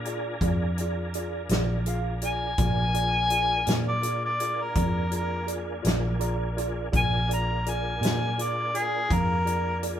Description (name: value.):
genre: slow blues.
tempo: 55 BPM (dotted quarters).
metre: 12/8.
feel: straight.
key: unclear.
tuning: A4 = 440 Hz.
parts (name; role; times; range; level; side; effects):
tonewheel organ; sustained chords; 0.0-10.0 s; Bb3 to Bb4; -38 LUFS; right 1 dB; slow rotary speaker, chorus vibrato.
vintage muted fingered electric bass; bass; 0.0-10.0 s; Bb1 to Bb2; -28 LUFS; equal; none.
mellow tine electric piano; accompaniment; 0.1-10.0 s; F4 to Bb5; -33 LUFS; right 2 dB; medium stereo tremolo.
natural country drum kit; drums; 0.1-10.0 s; hi-hat, kick drum, snare drum; -29 LUFS; equal; none.
mellow harmonica; melody; 2.2-9.8 s; Ab4 to Bb5; -26 LUFS; left 2 dB; none.
room: moderate studio reverb, RT60 0.7 s.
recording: band playing live in one room.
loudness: -24 LUFS.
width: side -10 dB against mid.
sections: 0.0-10.0 A section.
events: harmonica solo 0.0-10.0; tine electric piano fill 5.8-6.9.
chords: 0.0 Bb7.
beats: 0.41 1.50 | 2.58 3.67 4.76 5.84 | 6.93 8.02 9.10.